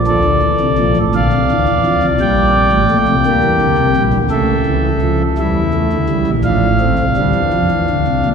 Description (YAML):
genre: classical, baroque-style 4-part fugue for pipe organ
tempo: 56 BPM (dotted quarters)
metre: 12/8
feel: straight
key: unclear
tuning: A4 = 440 Hz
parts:
  - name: pipe organ, principal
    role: solo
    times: 0.0-8.3 s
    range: A1 to G5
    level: -12 LUFS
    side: equal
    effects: none
room: wet cathedral reverb, RT60 4.7 s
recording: recorded in a church or concert hall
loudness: -12 LUFS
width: side -6 dB against mid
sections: 0.0-8.3 A section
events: none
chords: 0.1 Dm; 2.2 Gm; 4.3 A7/C#; 6.4 Dm/A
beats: | 0.07 1.14 2.20 3.26 | 4.32 5.38 6.45 7.52